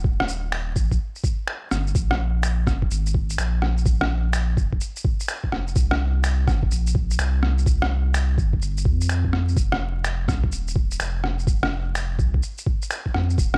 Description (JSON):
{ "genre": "future garage", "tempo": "126 BPM", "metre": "4/4", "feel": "swing 65% on 16ths", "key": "unclear", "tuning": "A4 = 440 Hz", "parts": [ { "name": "warm sub bass", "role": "bass", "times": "0.0-13.6 s", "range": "Eb1 to F2", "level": "-25 LUFS", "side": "equal", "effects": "sidechain pumping" }, { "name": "electronic kick drum", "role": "drums", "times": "0.0-13.5 s", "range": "none", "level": "-25 LUFS", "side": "equal", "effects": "overdrive, small room ambience" }, { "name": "electronic rim click, shaker and finger snaps", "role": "drums", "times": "0.2-13.6 s", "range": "none", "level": "-30 LUFS", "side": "equal", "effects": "overdrive, small room ambience" } ], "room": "light reverb", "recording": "vinyl crackle", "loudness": "-23 LUFS", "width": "mono", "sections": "0.0-1.9 A section; 1.9-13.6 A section", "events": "kick drops out 1.5-1.9", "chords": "none", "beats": "| 0.04 0.52 1.00 1.47 | 1.95 2.43 2.90 3.38 | 3.85 4.33 4.81 5.28 | 5.76 6.24 6.71 7.19 | 7.66 8.14 8.62 9.09 | 9.57 10.04 10.52 11.00 | 11.47 11.95 12.43 12.90 | 13.38" }